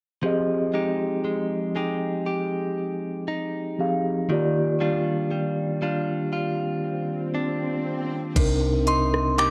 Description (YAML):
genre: contemporary R&B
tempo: 59 BPM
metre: 4/4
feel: straight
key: F dorian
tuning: A4 = 440 Hz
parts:
  - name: mellow tine electric piano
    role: accompaniment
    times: 0.2-9.5 s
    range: C3 to F5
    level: -28 LUFS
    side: equal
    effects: none
  - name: direct-recorded clean electric guitar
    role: arpeggios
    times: 0.2-9.5 s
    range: C3 to G4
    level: -31 LUFS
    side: equal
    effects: analog delay
  - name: soft 808-style bass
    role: bass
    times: 8.4-9.5 s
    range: C2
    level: -29 LUFS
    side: equal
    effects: none
  - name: smooth R&B drum kit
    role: drums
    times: 8.4-9.5 s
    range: crash cymbal, finger snaps, hi-hat, kick drum, rim click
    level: -27 LUFS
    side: equal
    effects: cassette tape
  - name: glassy synth bell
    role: melody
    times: 8.9-9.5 s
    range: C6 to D6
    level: -25 LUFS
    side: equal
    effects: chorus
  - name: small celesta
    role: texture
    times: 9.4-9.5 s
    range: G5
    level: -40 LUFS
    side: equal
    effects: none
room: light reverb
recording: home recording on cassette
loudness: -25 LUFS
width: mono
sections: 0.2-8.4 A section; 8.4-9.5 B section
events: none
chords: 0.2 Fm9; 4.3 Ebmaj9; 8.4 Cm7